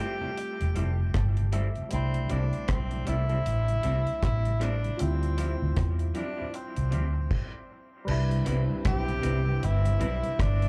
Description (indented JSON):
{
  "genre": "lovers rock reggae",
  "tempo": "78 BPM",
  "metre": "4/4",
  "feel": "swing 60% on 16ths",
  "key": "C major",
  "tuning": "A4 = 440 Hz",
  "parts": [
    { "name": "clear tenor saxophone", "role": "melody", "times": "0.0-10.7 s", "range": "C4 to G4", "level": "-37 LUFS", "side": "equal", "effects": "tape echo, slapback echo" },
    { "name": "barky tine electric piano", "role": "accompaniment", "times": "0.0-10.7 s", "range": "G3 to A5", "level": "-40 LUFS", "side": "equal", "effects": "overdrive, phaser, slapback echo" },
    { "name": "mellow tonewheel organ", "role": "accompaniment", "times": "0.0-10.7 s", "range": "D2 to E4", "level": "-43 LUFS", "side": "equal", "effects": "none" },
    { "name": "electric guitar through a small old amp", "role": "stabs", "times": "0.0-10.3 s", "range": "F3 to B4", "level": "-43 LUFS", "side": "equal", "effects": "lush chorus, dub echo, slapback echo" },
    { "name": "deep reggae drum kit", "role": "drums", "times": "0.4-10.7 s", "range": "crash cymbal, hi-hat, kick drum, rim click", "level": "-33 LUFS", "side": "equal", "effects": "none" },
    { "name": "vintage muted fingered electric bass", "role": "bass", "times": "0.6-10.7 s", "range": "E1 to E2", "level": "-29 LUFS", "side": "equal", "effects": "none" },
    { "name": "mellow saxophone section", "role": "second line", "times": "8.1-10.7 s", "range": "G2 to C4", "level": "-42 LUFS", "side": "equal", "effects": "dub echo, slapback echo" }
  ],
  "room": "small room ambience",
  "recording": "live gig heard through the venue's PA, club reverb",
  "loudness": "-28 LUFS",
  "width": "mono",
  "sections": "0.0-8.1 A section; 8.1-10.7 B section",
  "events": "tine electric piano fill 0.8-1.9; stop 7.3-8.1",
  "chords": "0.0 Fmaj9; 1.9 C6; 5.0 Dm11; 8.1 Cmaj7"
}